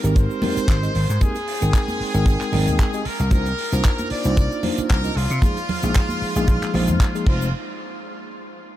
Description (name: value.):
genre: nu-disco, nu disco.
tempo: 114 BPM.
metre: 4/4.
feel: swing 54% on 16ths.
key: unclear.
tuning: A4 = 440 Hz.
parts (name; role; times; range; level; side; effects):
mellow tine electric piano; accompaniment; 0.0-7.5 s; F3 to G5; -26 LUFS; equal; medium stereo tremolo, sidechain pumping, ping-pong delay.
vintage slap bass; bass; 0.0-7.5 s; F1 to C3; -21 LUFS; equal; sidechain pumping.
damped 70s drum kit; drums; 0.0-7.4 s; crash cymbal, handclaps, hi-hat; -32 LUFS; right 2 dB; none.
egg shaker and congas; percussion; 0.0-7.5 s; none; -31 LUFS; right 2 dB; none.
brilliant trumpet section; melody; 0.2-7.5 s; F4 to D5; -28 LUFS; equal; ping-pong delay.
kick drum; drums; 0.2-7.4 s; none; -17 LUFS; equal; none.
room: light reverb, small room reverb.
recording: none.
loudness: -18 LUFS.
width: side -13 dB against mid.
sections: 0.0-7.5 A section; 7.5-8.8 B section.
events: drop 0.0-7.5.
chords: 0.0 Abmaj9; 3.1 Cm11; 5.4 Bb7sus4; 7.3 Fm7; 7.5 N.C..